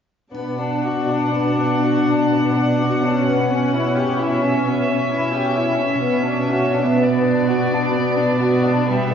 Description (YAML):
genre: classical, slow romantic movement for symphony orchestra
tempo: 63 BPM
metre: 3/4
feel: uneven beats, rubato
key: B minor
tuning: A4 = 444 Hz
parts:
  - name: warm studio violin section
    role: second line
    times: 0.3-9.1 s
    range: G3 to G4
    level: -23 LUFS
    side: left 2 dB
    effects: none
  - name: warm studio viola section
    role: accompaniment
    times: 0.3-9.1 s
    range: B3 to D4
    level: -20 LUFS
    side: right 1 dB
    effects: none
  - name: warm studio cello section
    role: bass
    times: 0.3-9.1 s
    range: B2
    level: -22 LUFS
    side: equal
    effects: none
  - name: triangle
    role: percussion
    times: 0.3-2.3 s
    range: none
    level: -55 LUFS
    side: equal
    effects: none
  - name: warm studio violin section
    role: melody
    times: 0.4-9.1 s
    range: D5 to F#5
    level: -25 LUFS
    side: left 2 dB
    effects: none
room: wet scoring stage reverb, RT60 1.7 s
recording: heard from further back in the room, nothing above 7.5 kHz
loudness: -16 LUFS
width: side -8 dB against mid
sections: 0.4-9.1 A section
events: none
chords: 0.4 Bm; 3.3 C#m7/B